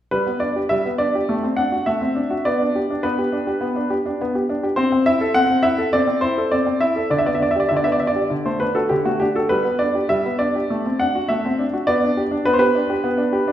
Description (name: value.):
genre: classical-period piano sonatina.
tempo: 102 BPM.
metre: 4/4.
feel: straight.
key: G major.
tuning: A4 = 440 Hz.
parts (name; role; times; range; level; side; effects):
clear baby grand piano; solo; 0.1-13.5 s; D3 to F#5; -17 LUFS; equal; none.
room: wet recital hall reverb, RT60 1.6 s.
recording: heard from further back in the room, faint mains hum.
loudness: -17 LUFS.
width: side -11 dB against mid.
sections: 0.1-13.5 A section.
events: none.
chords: 0.1 G; 1.3 D7/A; 2.5 G/B; 4.8 Am/C; 7.1 G/D; 8.3 D; 9.5 G; 10.7 D7/A; 11.9 G/B.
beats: | 0.13 0.71 1.30 1.88 | 2.46 3.04 3.62 4.19 | 4.77 5.35 5.93 6.52 | 7.12 7.71 8.32 8.92 | 9.52 10.11 10.70 11.30 | 11.88 12.47 13.05.